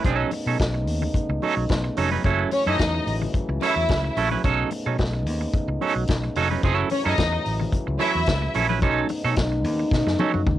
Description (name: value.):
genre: disco.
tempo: 110 BPM.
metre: 4/4.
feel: straight.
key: unclear.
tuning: A4 = 438 Hz.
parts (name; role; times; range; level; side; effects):
clean electric guitar; accompaniment; 0.0-10.5 s; F#3 to B4; -24 LUFS; right 7 dB; harmonic tremolo, cassette tape.
dark French horn section; sustained chords; 0.0-10.6 s; C#3 to D#4; -29 LUFS; left 1 dB; cassette tape.
fingered electric bass; bass; 0.0-10.6 s; E#1 to B2; -26 LUFS; left 1 dB; none.
vintage drum kit; drums; 0.0-10.6 s; hi-hat, kick drum, snare drum, toms; -27 LUFS; left 1 dB; cassette tape.
congas; percussion; 0.3-10.6 s; none; -34 LUFS; left 11 dB; none.
clear studio string section; second line; 2.5-8.5 s; C#4 to E5; -25 LUFS; left 1 dB; cassette tape.
room: light reverb.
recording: home recording on cassette.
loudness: -20 LUFS.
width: side -13 dB against mid.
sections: 0.0-10.6 A section.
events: drum fill 9.9-10.6.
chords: 0.0 B9; 2.2 F#m7; 4.4 B9; 6.6 F#m7; 8.8 B9.